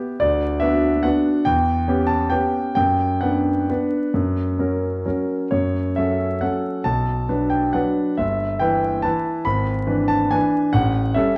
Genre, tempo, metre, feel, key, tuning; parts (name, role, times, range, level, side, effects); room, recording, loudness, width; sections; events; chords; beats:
classical, piano waltz; 124-151 BPM; 3/4; rubato; B minor; A4 = 441 Hz
clear concert grand piano; solo; 0.0-11.4 s; G1 to B5; -21 LUFS; equal
wet recital hall reverb, RT60 1.4 s; dark, warm production, vinyl crackle, nothing above 10.8 kHz; -21 LUFS; mono
0.0-11.4 A section
0.2 Bm/D; 1.5 C#m7b5/E; 2.8 Bm/F#; 4.1 F#; 5.5 F#m; 6.8 Bm; 8.2 Em/G; 9.5 E7/G#; 10.7 A7
| 0.21 0.61 1.04 | 1.46 1.87 2.31 | 2.76 3.22 3.69 | 4.14 4.58 5.04 | 5.51 5.96 6.42 | 6.85 7.28 7.74 | 8.19 8.62 9.05 | 9.46 9.88 10.31 | 10.74 11.15